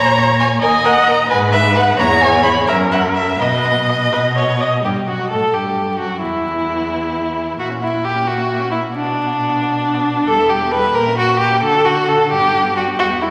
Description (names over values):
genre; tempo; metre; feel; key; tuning
quick classical-period movement for string quartet; 88 BPM (dotted quarters); 6/8; rubato; B major; A4 = 441 Hz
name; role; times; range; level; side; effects
rich violin; melody; 0.0-13.3 s; E4 to B5; -22 LUFS; equal; none
rich violin; second line; 0.0-13.3 s; D4 to E5; -19 LUFS; equal; none
warm viola; accompaniment; 0.0-13.3 s; E3 to D#5; -23 LUFS; equal; none
warm cello; bass; 0.0-13.3 s; D#2 to D3; -24 LUFS; equal; none
room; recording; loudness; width
wet concert hall reverb, RT60 2.4 s; vinyl crackle; -16 LUFS; mono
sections
0.0-4.8 A section; 4.8-13.3 A section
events
none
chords
0.0 A#m; 0.6 D#5; 1.3 G#m; 2.0 C#m/E; 2.7 F#7; 3.4 B; 4.8 F#m; 6.2 N.C.; 7.6 F#7/A#; 8.9 Bm; 10.3 Em; 10.9 A#dim7; 11.6 D; 12.3 Gmaj7